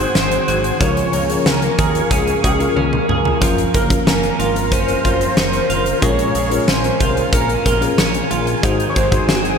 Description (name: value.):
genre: 1980s-style pop.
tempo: 92 BPM.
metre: 4/4.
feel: straight.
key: Bb minor.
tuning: A4 = 441 Hz.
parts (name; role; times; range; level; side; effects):
fat analog lead; melody; 0.0-9.6 s; Gb4 to Db5; -21 LUFS; right 1 dB; ping-pong delay.
FM electric piano with tremolo; accompaniment; 0.0-9.6 s; Ab2 to C5; -23 LUFS; left 6 dB; none.
soft string machine; sustained chords; 0.0-9.6 s; Bb4 to Eb6; -24 LUFS; right 1 dB; phaser, ensemble chorus.
twelve-string electric guitar; riff; 0.0-9.6 s; Eb3 to Ab4; -23 LUFS; right 5 dB; lush chorus.
fat analog bass; bass; 0.0-9.6 s; Gb1 to Eb2; -23 LUFS; equal; none.
huge arena drum kit; drums; 0.2-9.6 s; hi-hat, kick drum, snare drum, toms; -18 LUFS; equal; gated reverb.
room: light reverb, small room ambience.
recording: bright 1980s-style digital production.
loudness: -14 LUFS.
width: side -6 dB against mid.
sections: 0.0-9.6 A section.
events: drum fill 2.8-3.4.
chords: 0.0 Ab7; 0.8 Db6; 3.4 Gbmaj7; 6.0 Bbm7; 8.6 Ab7.